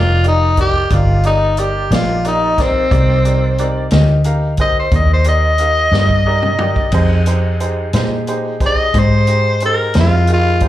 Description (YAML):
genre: slow blues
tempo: 60 BPM (dotted quarters)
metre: 12/8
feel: straight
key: C minor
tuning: A4 = 440 Hz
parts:
  - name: growling tenor saxophone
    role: melody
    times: 0.0-10.6 s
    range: C4 to Eb5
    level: -16 LUFS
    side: left 2 dB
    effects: slapback echo, tape echo
  - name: bright upright piano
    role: accompaniment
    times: 0.0-10.7 s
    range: Eb4 to Bb5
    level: -22 LUFS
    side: right 1 dB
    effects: slapback echo
  - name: vintage muted fingered electric bass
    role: bass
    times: 0.0-10.7 s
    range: F1 to Bb2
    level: -15 LUFS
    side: equal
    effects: none
  - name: vintage drum kit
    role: drums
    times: 0.2-10.7 s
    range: crash cymbal, hi-hat, kick drum, snare drum, toms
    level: -19 LUFS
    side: equal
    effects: none
room: small room ambience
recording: live gig heard through the venue's PA, club reverb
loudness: -12 LUFS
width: side -13 dB against mid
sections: 0.0-10.7 A section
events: drum fill 5.9-6.9; upright piano fill 5.9-6.9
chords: 0.0 Cm7; 6.9 Fm7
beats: 0.91 1.92 | 2.92 3.92 4.93 5.93 | 6.94 7.94 8.95 9.96